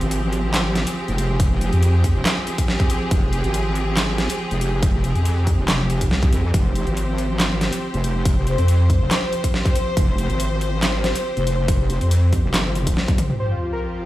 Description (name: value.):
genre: heavy wobble dubstep.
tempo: 140 BPM.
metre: 4/4.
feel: swing 53% on 16ths, half-time.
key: F minor.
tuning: A4 = 439 Hz.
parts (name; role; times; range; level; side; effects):
rich studio string section; sustained chords; 0.0-14.1 s; F2 to C5; -25 LUFS; equal; sidechain pumping.
wobble bass; bass; 0.0-13.0 s; F1 to F2; -20 LUFS; equal; chorus, overdrive.
dubstep drum kit; drums; 0.0-13.9 s; crash cymbal, handclaps, hi-hat, snare drum, toms; -23 LUFS; equal; overdrive, low-pass filter on hats, studio reverb, low-pass filter on snare, low-pass filter on toms, low-pass filter on cymbals.
electronic kick drum; drums; 1.4-13.2 s; none; -20 LUFS; equal; overdrive, studio reverb.
soft supersaw; melody; 13.4-14.0 s; F4 to C5; -26 LUFS; left 2 dB; cassette tape.
sub drop; sound effects; 13.4-14.1 s; none; -25 LUFS; equal; none.
room: light reverb.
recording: played on a big sound system in a bare room, stone room reverb.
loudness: -17 LUFS.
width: side -15 dB against mid.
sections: 0.0-13.4 A section.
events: drop 0.0-13.4; drum fill 13.0-13.4; impact 13.4-14.1.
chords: 0.0 Fmadd9; 13.4 Fsus2.